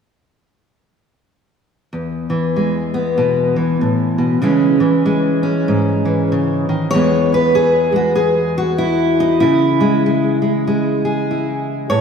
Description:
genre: folk, solo fingerstyle acoustic guitar.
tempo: 96 BPM.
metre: 4/4.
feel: swing 60% on 8ths.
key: E major.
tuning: A4 = 440 Hz.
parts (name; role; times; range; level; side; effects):
fingerpicked steel-string acoustic guitar; solo; 1.9-12.0 s; E2 to C#5; -14 LUFS; equal; lush chorus, tape echo.
room: wet lush hall reverb, RT60 2.7 s.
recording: dreamy mix soaked in reverb.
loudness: -14 LUFS.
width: side -6 dB against mid.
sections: 1.9-6.9 A section; 6.9-12.0 B section.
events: none.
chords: 1.9 E; 4.4 C#m; 6.9 E; 9.4 C#m.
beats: | 1.92 2.55 3.17 3.80 | 4.42 5.05 5.68 6.30 | 6.92 7.55 8.17 8.80 | 9.42 10.04 10.66 11.29 | 11.91.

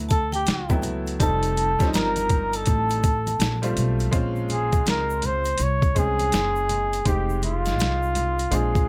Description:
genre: hip hop, jazz-hop.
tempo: 82 BPM.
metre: 4/4.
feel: swing 63% on 16ths.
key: Bb dorian.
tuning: A4 = 440 Hz.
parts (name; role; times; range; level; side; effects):
clear upright piano; accompaniment; 0.0-8.9 s; F3 to Ab4; -32 LUFS; equal; none.
upright bass; bass; 0.0-8.9 s; F1 to D2; -29 LUFS; equal; none.
warm flugelhorn; melody; 0.1-8.9 s; F4 to Db5; -27 LUFS; equal; none.
vibraphone with hard mallets; second line; 0.1-3.6 s; G5 to Bb5; -35 LUFS; equal; analog delay.
boom bap sampler-style drum kit; drums; 0.1-8.9 s; hi-hat, kick drum, snare drum; -26 LUFS; equal; overdrive, vintage 12-bit sampler grit.
egg shaker and congas; percussion; 0.1-8.9 s; none; -40 LUFS; equal; none.
room: light reverb.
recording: none.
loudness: -23 LUFS.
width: mono.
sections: 0.0-4.1 A section; 4.1-8.9 B section.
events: flugelhorn solo 4.1-8.9.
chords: 0.0 Gmaj7; 1.2 F7; 4.1 Bbm9; 7.1 Fm7.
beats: 0.47 | 1.21 1.94 2.67 3.40 | 4.13 4.86 5.59 6.33 | 7.06 7.79 8.52.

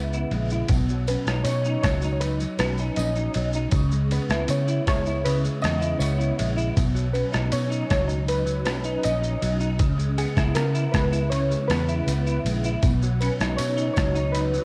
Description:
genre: indie pop, bedroom pop.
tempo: 79 BPM.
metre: 4/4.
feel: straight.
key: B major.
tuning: A4 = 442 Hz.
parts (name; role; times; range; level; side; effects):
warbly lo-fi synth keys; melody; 0.0-14.6 s; G#4 to D#5; -31 LUFS; equal; analog chorus, tape echo.
semi-hollow electric guitar; accompaniment; 0.0-14.6 s; B2 to E4; -30 LUFS; equal; ensemble chorus, warbly pitch drift.
lush unison pad; sustained chords; 0.0-0.7, 13.9-14.6 s; C#3 to E4; -43 LUFS; equal; none.
vintage muted fingered electric bass; bass; 0.0-14.6 s; A#1 to C#3; -28 LUFS; equal; none.
boom bap sampler-style drum kit; drums; 0.1-14.6 s; kick drum, ride cymbal, rim click, shaker; -30 LUFS; equal; overdrive.
tambourine; percussion; 0.3-14.6 s; none; -47 LUFS; equal; none.
room: light reverb, digital ambience.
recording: worn, warbling old tape, cassette tape, warbly pitch drift.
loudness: -24 LUFS.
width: mono.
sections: 0.7-14.6 A section.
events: none.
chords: 0.0 C#m7; 0.7 Badd9; 3.7 C#m7; 6.8 Badd9; 9.8 C#m7; 12.8 Badd9.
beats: | 0.70 1.46 2.22 2.97 | 3.73 4.49 5.25 6.01 | 6.76 7.52 8.28 9.04 | 9.80 10.56 11.31 12.07 | 12.83 13.59 14.35.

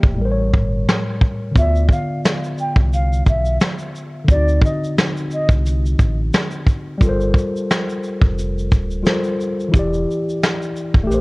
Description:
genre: lo-fi hip hop.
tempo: 88 BPM.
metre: 4/4.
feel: swing 56% on 16ths.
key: unclear.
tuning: A4 = 440 Hz.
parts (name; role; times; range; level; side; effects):
mellow tine electric piano; accompaniment; 0.0-11.2 s; A2 to G5; -22 LUFS; left 1 dB; cassette tape, low-pass filter.
sub bass with octave; bass; 0.0-11.2 s; D1 to D2; -19 LUFS; equal; none.
vintage brush drum kit; drums; 0.0-11.2 s; hi-hat, kick drum, shaker, snare drum; -16 LUFS; equal; none.
breathy mellow concert flute; melody; 1.6-5.5 s; D5 to G5; -24 LUFS; equal; low-pass filter, analog delay.
room: small room ambience.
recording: cassette tape.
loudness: -16 LUFS.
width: side -24 dB against mid.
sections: 0.0-11.2 A section.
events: break 0.0-1.6.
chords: 0.2 A7b9; 1.6 Dm6; 4.3 D7b9; 7.0 Gm11; 9.7 Em7.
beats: 0.19 0.87 | 1.55 2.24 2.92 3.60 | 4.28 4.96 5.65 6.33 | 7.01 7.69 8.37 9.05 | 9.74 10.42 11.10.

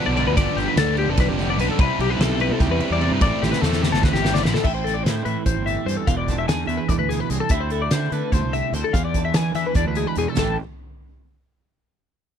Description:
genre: math rock and midwest emo.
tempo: 294 BPM (eighths).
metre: 7/8.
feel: straight.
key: A minor.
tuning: A4 = 440 Hz.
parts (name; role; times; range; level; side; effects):
twelve-string electric guitar; arpeggios; 0.0-10.6 s; G4 to G#5; -25 LUFS; left 8 dB; analog chorus.
overdriven electric guitar; riff; 0.0-4.6 s; G2 to E4; -24 LUFS; right 3 dB; none.
fuzz fingered electric bass; bass; 0.1-10.6 s; E1 to E3; -24 LUFS; equal; overdrive.
loose indie drum kit; drums; 0.2-10.5 s; crash cymbal, hi-hat, kick drum, ride cymbal, snare drum, toms; -23 LUFS; equal; none.
twelve-string electric guitar; accompaniment; 4.6-10.6 s; E2 to G#4; -27 LUFS; right 15 dB; none.
room: little or no reverb.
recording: none.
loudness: -18 LUFS.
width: side -8 dB against mid.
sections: 0.0-4.6 A section; 4.6-10.4 B section; 10.4-11.8 C section.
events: drum fill 3.4-4.6.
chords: 0.0 G7; 1.8 Cmaj9; 3.2 Am7; 6.1 E7b9; 7.5 Dsus2; 8.9 E7b9; 10.4 A7(no3).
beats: 0.16 | 0.36 0.57 0.77 0.97 1.18 1.38 1.59 | 1.79 1.99 2.20 2.40 2.60 2.81 3.01 | 3.22 3.42 3.62 3.83 4.03 4.24 4.44 | 4.64 4.85 5.05 5.26 5.46 5.67 5.87 | 6.08 6.28 6.48 6.69 6.89 7.10 7.30 | 7.51 7.71 7.92 8.12 8.32 8.53 8.73 | 8.94 9.14 9.35 9.55 9.75 9.96 10.16 | 10.37.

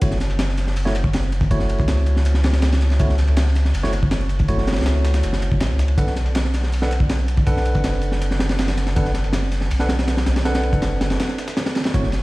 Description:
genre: drum and bass, jungle.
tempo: 161 BPM.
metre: 4/4.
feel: straight.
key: F# minor.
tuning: A4 = 440 Hz.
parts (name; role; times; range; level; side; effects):
bright tine electric piano; stabs; 0.0-12.1 s; A3 to F#5; -27 LUFS; right 1 dB; vintage 12-bit sampler grit, low-pass filter, dub echo.
soft dub sub bass; bass; 0.0-12.2 s; F#1 to C#2; -20 LUFS; equal; none.
crunchy breakbeat drum kit; drums; 0.0-12.2 s; kick drum, ride cymbal, snare drum; -21 LUFS; equal; none.
dusty soul sampler-style drum kit; drums; 0.0-12.2 s; hi-hat, snare drum; -37 LUFS; left 2 dB; high-pass filter on snare, high-pass filter on hats.
room: small room reverb.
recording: played on a big sound system in a bare room, stone room reverb, vinyl crackle.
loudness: -17 LUFS.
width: side -20 dB against mid.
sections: 0.0-12.2 A section.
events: drop 0.0-12.2; break 11.2-11.9.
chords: 0.0 F#m7; 6.0 Bm7.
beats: | 0.02 0.39 0.76 1.14 | 1.51 1.88 2.25 2.62 | 3.00 3.37 3.74 4.12 | 4.49 4.86 5.23 5.61 | 5.98 6.35 6.72 7.10 | 7.47 7.84 8.21 8.59 | 8.96 9.33 9.71 10.08 | 10.45 10.82 11.20 11.57 | 11.94.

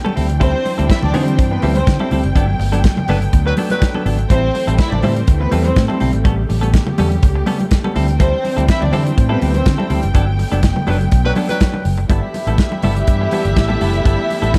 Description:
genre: disco.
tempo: 123 BPM.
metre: 4/4.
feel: straight.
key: G major.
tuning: A4 = 440 Hz.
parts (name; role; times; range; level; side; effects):
clean electric guitar; accompaniment; 0.0-14.6 s; F#3 to A4; -25 LUFS; equal; spring reverb.
dark studio string section; sustained chords; 0.0-14.6 s; C#3 to G5; -27 LUFS; equal; none.
congas; percussion; 0.1-14.6 s; none; -27 LUFS; equal; none.
fingered electric bass; bass; 0.2-14.5 s; F#1 to D3; -20 LUFS; equal; none.
warm soul drum kit; drums; 0.2-14.6 s; hi-hat, kick drum, snare drum; -18 LUFS; equal; none.
dark studio string section; second line; 0.4-14.6 s; B3 to E5; -24 LUFS; equal; none.
warm horn section; stabs; 3.1-4.0, 10.9-14.6 s; E3 to B4; -26 LUFS; equal; none.
room: light reverb, studio ambience.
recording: none.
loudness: -16 LUFS.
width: mono.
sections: 0.0-12.1 A section; 12.1-14.6 B section.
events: band accent 2.4-4.3, 10.1-12.1.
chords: 0.2 D9sus4; 2.4 Gmaj9; 4.3 Am7; 6.3 A9; 8.0 D9sus4; 10.1 Gmaj9; 12.1 G69.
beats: | 0.41 0.90 1.38 1.87 | 2.35 2.84 3.33 3.82 | 4.30 4.79 5.28 5.76 | 6.25 6.74 7.23 7.71 | 8.20 8.69 9.17 9.66 | 10.15 10.64 11.12 11.61 | 12.10 12.59 13.08 13.56 | 14.05 14.54.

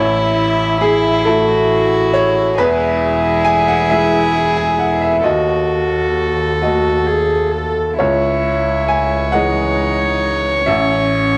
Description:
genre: neoclassical piano and strings.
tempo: 45 BPM (dotted quarters).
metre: 6/8.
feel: rubato.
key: unclear.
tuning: A4 = 440 Hz.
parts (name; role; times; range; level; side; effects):
warm violin; melody; 0.0-11.4 s; E4 to C#5; -21 LUFS; equal; cassette tape, plate reverb.
warm cello; second line; 0.0-11.4 s; C#4 to A4; -22 LUFS; equal; cassette tape, plate reverb.
bright upright piano; accompaniment; 0.0-11.4 s; A1 to G#5; -19 LUFS; equal; cassette tape, plate reverb.
dark double bass; bass; 0.0-11.4 s; E1 to D#2; -25 LUFS; equal; none.
room: moderate small room reverb, RT60 0.5 s.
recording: home recording on cassette.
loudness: -15 LUFS.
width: mono.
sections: 0.0-11.4 A section.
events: none.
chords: 0.0 A; 2.6 E; 5.2 D#dim; 8.0 C#madd9; 10.7 A.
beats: 1.26 | 2.58 3.90 | 5.24 6.61 | 7.99 9.34 | 10.67.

